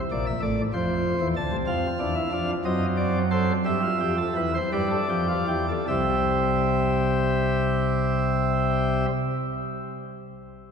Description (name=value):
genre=classical, baroque-style 3-part fugue for pipe organ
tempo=50-65 BPM (dotted quarters)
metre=6/8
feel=straight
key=C major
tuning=A4 = 440 Hz
part: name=chamber organ, principal chorus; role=solo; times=0.1-9.1 s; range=A1 to A5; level=-22 LUFS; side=equal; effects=none
room=wet cathedral reverb, RT60 4.5 s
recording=recorded in a church or concert hall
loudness=-22 LUFS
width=side -6 dB against mid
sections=0.0-5.9 A section; 5.9-10.7 B section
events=slowing down 0.7-5.9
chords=0.0 A5; 0.7 F; 1.7 Dm7; 2.6 F#dim7; 3.6 C; 4.7 G7; 5.9 C